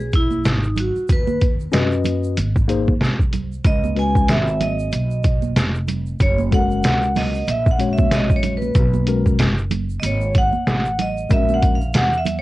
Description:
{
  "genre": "hip hop, jazz-hop",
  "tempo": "94 BPM",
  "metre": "4/4",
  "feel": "swing 59% on 16ths",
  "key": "unclear",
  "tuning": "A4 = 439 Hz",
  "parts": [
    { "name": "vibraphone with medium hard mallets", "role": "melody", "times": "0.0-12.4 s", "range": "D#4 to G#5", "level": "-22 LUFS", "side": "right 1 dB", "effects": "cassette tape, plate reverb" },
    { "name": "upright bass", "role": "bass", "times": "0.0-12.4 s", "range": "E#1 to F#2", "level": "-23 LUFS", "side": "equal", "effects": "none" },
    { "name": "egg shaker and congas", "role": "percussion", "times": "0.0-12.4 s", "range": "none", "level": "-29 LUFS", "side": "right 8 dB", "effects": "none" },
    { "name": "trip hop sampler-style drum kit", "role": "drums", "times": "0.1-12.4 s", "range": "hi-hat, kick drum, snare drum", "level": "-18 LUFS", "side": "equal", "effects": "vintage 12-bit sampler grit, cassette tape" },
    { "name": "mellow tine electric piano", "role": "accompaniment", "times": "1.7-11.8 s", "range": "G#3 to D#5", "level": "-23 LUFS", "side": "left 5 dB", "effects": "medium stereo tremolo, cassette tape" }
  ],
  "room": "moderate booth ambience, RT60 0.2 s",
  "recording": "home recording on cassette, nothing above 10.7 kHz",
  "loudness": "-16 LUFS",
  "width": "side -17 dB against mid",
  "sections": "0.0-12.4 A section",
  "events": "vibraphone solo 0.0-12.4",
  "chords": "0.0 G#m7; 1.1 Badd9/D#; 2.4 G#; 3.6 C#sus2; 6.2 F#; 8.8 Bsus2; 11.3 A#m7b5",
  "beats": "0.46 | 1.09 1.73 2.37 3.01 | 3.65 4.29 4.92 5.56 | 6.20 6.84 7.48 8.12 | 8.75 9.39 10.03 10.67 | 11.31 11.94"
}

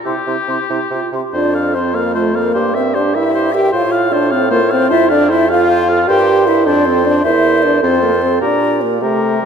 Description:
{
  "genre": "quick classical-period movement for wind quintet",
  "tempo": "102 BPM (dotted quarters)",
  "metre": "6/8",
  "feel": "rubato",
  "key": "F major",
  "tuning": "A4 = 440 Hz",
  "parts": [
    { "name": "mellow hollow concert flute", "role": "melody", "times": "0.1-9.5 s", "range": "G4 to C6", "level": "-20 LUFS", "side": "left 8 dB", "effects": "none" },
    { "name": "clear oboe", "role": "second line", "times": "0.1-9.5 s", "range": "G4 to F5", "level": "-19 LUFS", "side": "left 2 dB", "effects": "none" },
    { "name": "dark clarinet", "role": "accompaniment", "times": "0.1-9.5 s", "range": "E4 to Bb4", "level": "-20 LUFS", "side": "right 8 dB", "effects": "none" },
    { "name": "mellow French horn", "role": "accompaniment", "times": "0.1-9.5 s", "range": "G3 to G4", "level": "-16 LUFS", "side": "equal", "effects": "none" },
    { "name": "clear bassoon", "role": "bass", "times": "0.1-9.5 s", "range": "E2 to C3", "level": "-19 LUFS", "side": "right 3 dB", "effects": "none" }
  ],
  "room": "moderate scoring stage reverb, RT60 1.7 s",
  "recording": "minimal, uncompressed stereo recording",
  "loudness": "-11 LUFS",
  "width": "side -7 dB against mid",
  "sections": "0.0-1.3 A section; 1.3-9.5 B section",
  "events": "none",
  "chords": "0.1 C; 1.3 F; 2.5 C7/G; 3.7 F/A; 4.9 F; 6.1 C5/G; 6.7 F; 7.2 C7/E; 7.8 F; 8.4 Gm/Bb",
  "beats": "| 0.06 0.70 | 1.34 1.95 | 2.54 3.15 | 3.74 4.32 | 4.91 5.49 | 6.08 6.66 | 7.24 7.83 | 8.41 9.02"
}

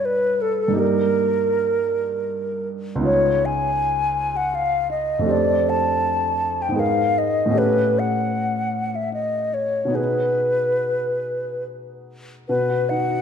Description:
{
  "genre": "classical, impressionist duo for flute and grand piano",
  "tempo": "70-84 BPM",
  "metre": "3/4",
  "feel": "rubato",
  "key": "unclear",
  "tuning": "A4 = 440 Hz",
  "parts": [
    { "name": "mellow hollow concert flute", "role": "melody", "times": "0.0-13.2 s", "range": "A4 to A5", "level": "-20 LUFS", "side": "left 1 dB", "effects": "none" },
    { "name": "warm grand piano", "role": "accompaniment", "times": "0.0-13.2 s", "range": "C#2 to D5", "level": "-24 LUFS", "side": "right 1 dB", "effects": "none" }
  ],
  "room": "wet scoring stage reverb, RT60 1.8 s",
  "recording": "dark, warm production",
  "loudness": "-19 LUFS",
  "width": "side -7 dB against mid",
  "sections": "0.0-12.5 A section",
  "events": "none",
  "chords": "0.0 G6; 0.8 D#maj7/G; 3.1 C#9; 5.3 F69; 6.8 G#madd9; 7.6 A9; 10.0 B6; 12.5 B",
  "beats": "0.06 | 0.81 1.56 2.31 | 3.07 3.83 4.55 | 5.31 6.07 6.80 | 7.58 8.38 9.15 | 9.98 10.83 11.66 | 12.49"
}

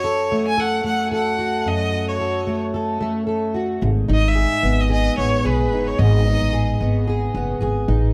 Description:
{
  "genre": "acoustic pop",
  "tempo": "111 BPM",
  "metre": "4/4",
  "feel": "swing 55% on 16ths",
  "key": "unclear",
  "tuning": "A4 = 439 Hz",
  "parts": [
    { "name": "rich violin", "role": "melody", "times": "0.0-6.8 s", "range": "B4 to G#5", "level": "-26 LUFS", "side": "equal", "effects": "plate reverb, tape echo" },
    { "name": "fingerpicked plugged-in steel-string acoustic guitar", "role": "accompaniment", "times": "0.0-8.1 s", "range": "F#2 to A4", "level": "-24 LUFS", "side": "equal", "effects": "double-tracked, plate reverb" },
    { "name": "upright bass", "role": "bass", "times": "3.8-8.1 s", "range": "F#1 to B1", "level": "-21 LUFS", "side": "equal", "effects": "none" }
  ],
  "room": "moderate studio reverb, RT60 0.6 s",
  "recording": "none",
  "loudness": "-20 LUFS",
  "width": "mono",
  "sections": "0.0-8.1 A section",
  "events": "none",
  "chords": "0.0 F#m; 3.8 G#m",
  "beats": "0.04 0.58 1.12 | 1.66 2.20 2.75 3.29 | 3.83 4.37 4.91 5.45 | 5.99 6.53 7.07 7.61"
}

